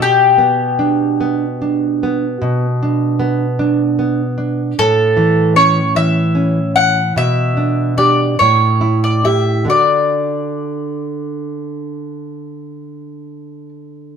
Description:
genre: romantic duo for mandolin and classical guitar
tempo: 43-52 BPM (dotted quarters)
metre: 12/8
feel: rubato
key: D major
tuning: A4 = 441 Hz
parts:
  - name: mandolin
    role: melody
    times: 0.0-13.7 s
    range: G4 to F#5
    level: -14 LUFS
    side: left 2 dB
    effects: none
  - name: nylon-string guitar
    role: accompaniment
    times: 0.0-14.2 s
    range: A2 to G4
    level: -16 LUFS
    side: right 2 dB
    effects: none
room: wet studio reverb, RT60 0.9 s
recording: band playing live in one room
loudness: -12 LUFS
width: side -7 dB against mid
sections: 0.0-14.2 A section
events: none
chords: 0.0 G/B; 4.8 A; 7.1 G/B; 8.4 A7; 9.7 D

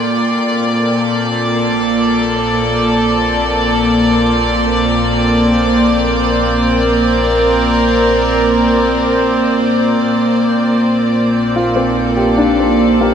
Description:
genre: ambient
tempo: free time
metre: none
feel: none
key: Bb major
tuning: A4 = 440 Hz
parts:
  - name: rich chamber string section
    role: sustained chords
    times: 0.0-13.1 s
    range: Bb2 to G5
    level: -12 LUFS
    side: equal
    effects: shimmer reverb
  - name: felt-muted upright piano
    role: arpeggios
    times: 0.0-0.3, 11.6-13.1 s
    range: Bb3 to A4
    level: -16 LUFS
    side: left 2 dB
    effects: tape echo, shimmer reverb
  - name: deep rumbling drone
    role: bass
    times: 1.9-13.1 s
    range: Bb1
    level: -24 LUFS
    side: equal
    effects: built-in reverb, tube saturation
  - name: analog drone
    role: drone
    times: 0.0-13.1 s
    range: Bb3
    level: -20 LUFS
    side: equal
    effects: chorus
room: wet huge ambient reverb, RT60 8.3 s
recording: none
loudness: -11 LUFS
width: side -8 dB against mid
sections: 0.0-10.0 A section; 10.0-13.1 A section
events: fade-in on synth drone 0.0-10.0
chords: 0.0 Bbmaj7

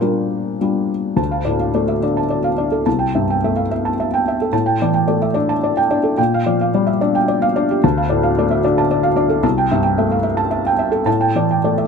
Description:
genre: neoclassical minimalist piano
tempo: 109 BPM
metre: 3/4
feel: rubato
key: D minor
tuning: A4 = 440 Hz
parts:
  - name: felt-muted upright piano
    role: solo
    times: 0.0-11.9 s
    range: C2 to A5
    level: -15 LUFS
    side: equal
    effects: none
room: light reverb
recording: close, detailed microphones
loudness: -15 LUFS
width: side -6 dB against mid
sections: 0.0-1.2 A section; 1.2-11.9 B section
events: none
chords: 0.0 Gm7/Bb; 1.2 Dm; 2.9 C6; 4.5 A7sus4; 6.2 Gm7/Bb; 7.8 Dm; 9.4 C6; 11.1 A7sus4

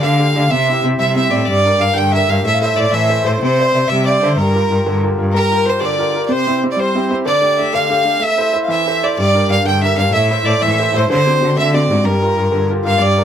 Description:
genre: celtic folk, Celtic jig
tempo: 125 BPM (dotted quarters)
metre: 6/8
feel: straight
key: G dorian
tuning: A4 = 440 Hz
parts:
  - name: rich fiddle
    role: melody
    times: 0.0-13.2 s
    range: Bb4 to G5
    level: -16 LUFS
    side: right 3 dB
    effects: plate reverb
  - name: rich fiddle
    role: second line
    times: 0.0-13.2 s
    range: Bb4 to G5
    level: -21 LUFS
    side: left 6 dB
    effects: none
  - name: bright upright piano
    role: accompaniment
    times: 0.0-13.2 s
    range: C3 to E5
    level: -19 LUFS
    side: equal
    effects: none
  - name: clear cello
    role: bass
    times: 0.0-5.3, 9.2-13.2 s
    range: G2 to D3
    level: -17 LUFS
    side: left 1 dB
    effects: none
room: moderate small room reverb, RT60 0.5 s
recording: none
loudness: -12 LUFS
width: side -9 dB against mid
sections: 0.0-5.3 A section; 5.3-13.0 A section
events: none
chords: 0.0 Gsus2/D; 0.5 C; 1.5 Gm; 2.4 Am; 3.4 Cadd9; 4.4 Gm7; 6.3 C; 7.3 Gsus2/D; 8.2 Am; 9.2 Gm; 10.1 Am; 11.1 D7; 12.0 Gm7

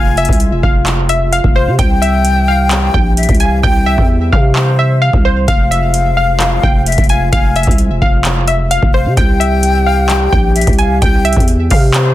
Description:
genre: hip hop, trap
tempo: 130 BPM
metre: 4/4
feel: half-time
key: F harmonic minor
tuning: A4 = 440 Hz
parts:
  - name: glassy wavetable pluck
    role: melody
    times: 0.0-12.1 s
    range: C5 to Ab5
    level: -17 LUFS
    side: equal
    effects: chorus, digital delay
  - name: breathy jazz flute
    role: second line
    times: 0.0-12.1 s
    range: C5 to Ab5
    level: -19 LUFS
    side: left 4 dB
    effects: digital delay
  - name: mellow French horn section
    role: sustained chords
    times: 0.0-12.1 s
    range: C3 to G4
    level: -23 LUFS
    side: equal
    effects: stereo widening
  - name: growling 808-style bass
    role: bass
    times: 0.0-12.1 s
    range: E1 to C3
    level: -14 LUFS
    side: equal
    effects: none
  - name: booming analog drum machine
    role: drums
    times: 0.2-12.1 s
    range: handclaps, hi-hat, kick drum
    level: -13 LUFS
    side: equal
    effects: overdrive
room: digital ambience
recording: dense, heavily limited modern master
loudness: -9 LUFS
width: side -14 dB against mid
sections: 0.0-12.1 A section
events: hi-hats muted 3.6-5.5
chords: 0.0 Fm; 1.8 C; 5.5 Fm; 9.2 C

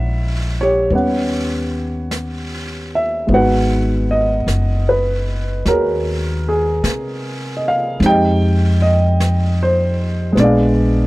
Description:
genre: jazz ballad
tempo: 51 BPM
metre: 4/4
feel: swing 68% on 8ths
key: unclear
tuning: A4 = 443 Hz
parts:
  - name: dark upright piano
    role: accompaniment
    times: 0.0-11.1 s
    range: G3 to G5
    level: -17 LUFS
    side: equal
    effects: none
  - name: upright bass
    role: bass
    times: 0.0-11.1 s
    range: Gb1 to C3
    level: -18 LUFS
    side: equal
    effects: none
  - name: jazz brush drum kit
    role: drums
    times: 0.9-11.1 s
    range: brushed snare drum, hi-hat, snare drum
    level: -30 LUFS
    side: equal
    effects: none
room: little or no reverb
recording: dry, close 1970s-style studio recording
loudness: -14 LUFS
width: side -19 dB against mid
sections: 0.0-11.1 A section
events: none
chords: 0.0 Bbm7b5; 0.9 Eb7alt; 3.3 Abm7; 8.0 Fm9; 10.4 Bb7b9

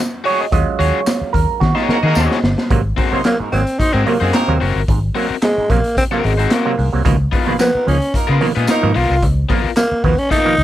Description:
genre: funk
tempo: 110 BPM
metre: 4/4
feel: straight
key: unclear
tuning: A4 = 442 Hz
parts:
  - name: crunchy overdriven guitar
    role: accompaniment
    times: 0.2-10.5 s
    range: Cb4 to Eb5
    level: -20 LUFS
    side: left 8 dB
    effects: none
  - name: auto-wah clav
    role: stabs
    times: 0.3-10.6 s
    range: Ab2 to Eb5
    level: -20 LUFS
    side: right 7 dB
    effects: none
  - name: raw garage drum kit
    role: drums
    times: 0.3-10.6 s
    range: handclaps, hi-hat, kick drum, snare drum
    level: -19 LUFS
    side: equal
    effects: none
  - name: vintage muted fingered electric bass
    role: bass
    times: 0.5-10.6 s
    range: Gb1 to Eb3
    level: -17 LUFS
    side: equal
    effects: none
  - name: tambourine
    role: percussion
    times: 1.1-2.3, 7.6-9.9 s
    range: none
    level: -30 LUFS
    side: left 3 dB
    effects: none
  - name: mellow horn section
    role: second line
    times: 1.9-8.9 s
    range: Ab3 to C5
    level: -22 LUFS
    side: right 1 dB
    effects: none
  - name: growling tenor saxophone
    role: melody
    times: 3.3-10.6 s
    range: Ab3 to F4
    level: -17 LUFS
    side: equal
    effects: none
room: little or no reverb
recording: none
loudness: -13 LUFS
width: side -13 dB against mid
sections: 0.0-2.7 A section; 2.7-10.6 B section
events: clav solo 0.0-2.7; band accent 0.5-2.7; drum fill 1.6-2.7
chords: 0.0 Ebm11; 2.7 Ab9; 7.1 Db13

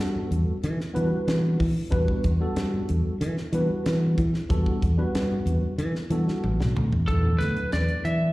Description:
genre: electric jazz fusion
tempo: 93 BPM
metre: 4/4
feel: straight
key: E minor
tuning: A4 = 440 Hz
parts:
  - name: tine electric piano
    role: accompaniment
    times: 0.0-8.3 s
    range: F#3 to B4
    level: -28 LUFS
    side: equal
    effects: medium tremolo, analog chorus, slapback echo
  - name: fingered electric bass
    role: bass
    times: 0.0-8.3 s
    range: A1 to E3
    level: -24 LUFS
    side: equal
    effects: none
  - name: crisp fusion drum kit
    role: drums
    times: 0.3-8.2 s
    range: hi-hat, kick drum, snare drum, toms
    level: -29 LUFS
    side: equal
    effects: none
  - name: lightly driven lead guitar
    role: melody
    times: 7.1-8.3 s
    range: A4 to E5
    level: -28 LUFS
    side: equal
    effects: slapback echo
room: light reverb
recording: live gig heard through the venue's PA, recital hall reverb, lossy compression artefacts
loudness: -22 LUFS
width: side -19 dB against mid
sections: 0.0-7.1 A section; 7.1-8.3 B section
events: drum fill 6.4-7.1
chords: 0.0 Em11; 7.1 E9sus4

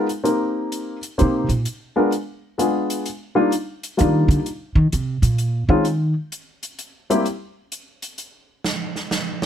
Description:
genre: jazz piano trio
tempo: 129 BPM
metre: 3/4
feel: swing 66% on 8ths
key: unclear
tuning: A4 = 440 Hz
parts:
  - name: warm baby grand piano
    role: melody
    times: 0.0-7.2 s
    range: G3 to C5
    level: -19 LUFS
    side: left 2 dB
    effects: none
  - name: swinging big-band drum kit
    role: drums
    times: 0.1-9.5 s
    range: hi-hat, snare drum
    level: -28 LUFS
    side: right 2 dB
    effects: none
  - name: upright bass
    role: bass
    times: 1.2-1.6, 4.0-6.1 s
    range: Bb2 to Eb3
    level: -18 LUFS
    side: right 1 dB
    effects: none
room: little or no reverb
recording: close, detailed microphones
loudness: -19 LUFS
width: side -9 dB against mid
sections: 0.0-8.7 A section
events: upright bass solo 0.0-8.7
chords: 0.3 Cm7; 1.7 Bb7b9 (rootless); 3.1 Ebmaj9; 4.5 Abadd9 (rootless); 5.9 N.C.

